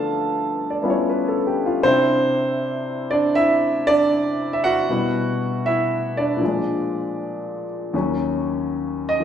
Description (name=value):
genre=solo jazz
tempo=79 BPM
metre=4/4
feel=swing 67% on 8ths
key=unclear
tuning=A4 = 440 Hz
part: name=warm baby grand piano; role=solo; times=0.0-9.2 s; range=Eb2 to A5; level=-19 LUFS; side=equal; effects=none
room=wet recital hall reverb, RT60 1.5 s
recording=recorded in a church or concert hall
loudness=-19 LUFS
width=side -9 dB against mid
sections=0.0-7.9 A section; 7.9-9.2 B section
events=grand piano solo 7.9-9.2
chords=0.0 G13; 1.8 Cadd9; 4.9 Em9/B; 6.4 A#7; 7.9 Ebm7